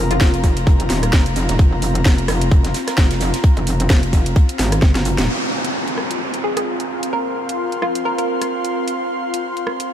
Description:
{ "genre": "bass house", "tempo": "130 BPM", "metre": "4/4", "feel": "swing 57% on 16ths", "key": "unclear", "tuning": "A4 = 440 Hz", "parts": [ { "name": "metallic wobble bass", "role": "bass", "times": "0.0-5.3 s", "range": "Eb1 to Ab1", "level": "-19 LUFS", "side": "equal", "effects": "chorus, tube saturation, sidechain pumping" }, { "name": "airy breathy pad", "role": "texture", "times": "0.0-9.9 s", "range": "C4 to C6", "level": "-24 LUFS", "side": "equal", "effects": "chorus, sidechain pumping" }, { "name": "hollow square pluck", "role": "melody", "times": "0.1-0.6, 6.4-8.2 s", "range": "F4 to Bb4", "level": "-25 LUFS", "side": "left 1 dB", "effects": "analog chorus, ping-pong delay" }, { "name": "garage drum kit", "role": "drums", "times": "0.1-9.9 s", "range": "hi-hat, rim click, snare drum", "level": "-24 LUFS", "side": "equal", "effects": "overdrive" }, { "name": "electronic kick drum", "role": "drums", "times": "0.2-4.9 s", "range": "none", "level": "-13 LUFS", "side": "equal", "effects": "overdrive" }, { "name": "warm soul drum kit", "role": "drums", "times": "0.2-5.3 s", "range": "hi-hat, snare drum", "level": "-35 LUFS", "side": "right 3 dB", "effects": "none" }, { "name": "downlifter", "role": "sound effects", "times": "5.3-9.0 s", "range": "none", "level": "-27 LUFS", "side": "equal", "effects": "none" } ], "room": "light reverb, digital ambience", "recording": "none", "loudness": "-15 LUFS", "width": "side -10 dB against mid", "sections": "0.0-5.3 A section; 5.3-9.9 B section", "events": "drum fill 4.8-5.3; band accent 5.2", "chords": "0.0 F5" }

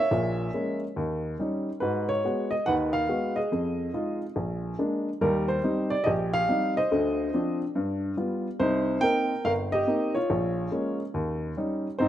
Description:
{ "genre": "solo jazz", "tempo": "142 BPM", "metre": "4/4", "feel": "swing 65% on 8ths", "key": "Eb major, C minor from 8.6 s", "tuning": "A4 = 440 Hz", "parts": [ { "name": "warm upright piano", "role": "solo", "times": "0.0-12.1 s", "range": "G1 to G5", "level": "-25 LUFS", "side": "equal", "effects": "none" } ], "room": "moderate lush hall reverb, RT60 2.2 s", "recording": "rough home demo mix", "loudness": "-25 LUFS", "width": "side -12 dB against mid", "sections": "0.0-8.6 A section; 8.6-12.1 B section", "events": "none", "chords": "0.1 Bbm7b5; 1.0 Eb7; 1.8 Abm7; 3.5 Fm7; 4.4 Bb7; 5.2 Eb6; 6.9 Dm7; 7.8 G7; 8.6 Cm7; 10.3 Bbm7; 11.1 Eb7" }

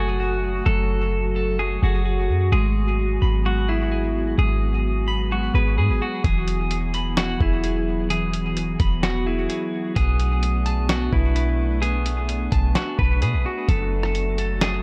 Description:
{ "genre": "hip hop, atmospheric cloud-rap", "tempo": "129 BPM", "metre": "4/4", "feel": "half-time", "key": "F# minor", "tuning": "A4 = 440 Hz", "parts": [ { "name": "clean electric guitar", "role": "melody", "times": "0.0-14.8 s", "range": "E4 to B4", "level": "-29 LUFS", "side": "equal", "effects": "dub echo" }, { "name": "glassy FM pad", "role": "sustained chords", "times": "0.0-14.8 s", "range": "F#3 to F#4", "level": "-33 LUFS", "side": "equal", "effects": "ensemble chorus, built-in reverb, sidechain pumping" }, { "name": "clean electric guitar", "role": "arpeggios", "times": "0.0-14.8 s", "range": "E3 to B5", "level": "-33 LUFS", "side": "equal", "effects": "dub echo" }, { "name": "clean 808-style bass", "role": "bass", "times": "0.0-14.8 s", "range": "E1 to B2", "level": "-24 LUFS", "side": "equal", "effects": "none" }, { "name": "lo-fi sampler-style drum kit", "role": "drums", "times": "6.2-14.7 s", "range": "hi-hat, kick drum, rim click, snare drum", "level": "-27 LUFS", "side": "equal", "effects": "none" } ], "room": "light reverb, digital ambience", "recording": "echo-heavy mix", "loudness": "-22 LUFS", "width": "mono", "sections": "0.0-13.7 A section; 13.7-14.8 B section", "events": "none", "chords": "0.0 F#madd9; 2.5 G#m7; 6.2 E; 10.0 Bm7; 13.7 F#m" }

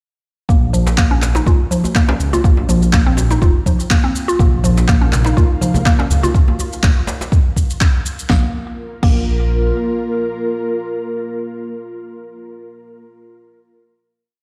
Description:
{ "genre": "afro house", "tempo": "123 BPM", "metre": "4/4", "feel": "swing 54% on 16ths", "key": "Bb minor pentatonic", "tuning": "A4 = 441 Hz", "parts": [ { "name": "mallet-like synth pluck", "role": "arpeggios", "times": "0.5-9.2 s", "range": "F3 to F4", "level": "-22 LUFS", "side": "equal", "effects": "chorus, vintage 12-bit sampler grit, sidechain pumping, delay" }, { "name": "dark detuned saw bass", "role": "bass", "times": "0.5-9.7 s", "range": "F1 to Db2", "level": "-19 LUFS", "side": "equal", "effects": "sidechain pumping" }, { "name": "deep house drum kit", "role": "drums", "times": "0.5-9.2 s", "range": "crash cymbal, handclaps, shaker, snare drum", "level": "-26 LUFS", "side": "equal", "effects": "none" }, { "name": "electronic kick drum", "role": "drums", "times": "0.5-9.2 s", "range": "none", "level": "-16 LUFS", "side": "equal", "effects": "none" }, { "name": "djembe", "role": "percussion", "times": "0.9-7.3 s", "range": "none", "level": "-26 LUFS", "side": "equal", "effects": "none" }, { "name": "ethereal airy pad", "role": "sustained chords", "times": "5.0-12.3 s", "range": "Bb3 to F5", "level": "-26 LUFS", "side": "equal", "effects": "ensemble chorus, built-in reverb, sidechain pumping" }, { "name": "congas", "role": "percussion", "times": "4.4-6.3 s", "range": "none", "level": "-24 LUFS", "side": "equal", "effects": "none" } ], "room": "light reverb, digital ambience", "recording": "played on a big sound system in a bare room, stone room reverb", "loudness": "-15 LUFS", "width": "mono", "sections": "0.5-8.3 groove; 8.3-12.2 final chord", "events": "filter sweep on synth pluck 0.5-6.3", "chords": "0.5 Bbm; 2.4 Fsus4; 4.4 Eb5/Bb; 6.3 N.C.; 8.3 Bb5" }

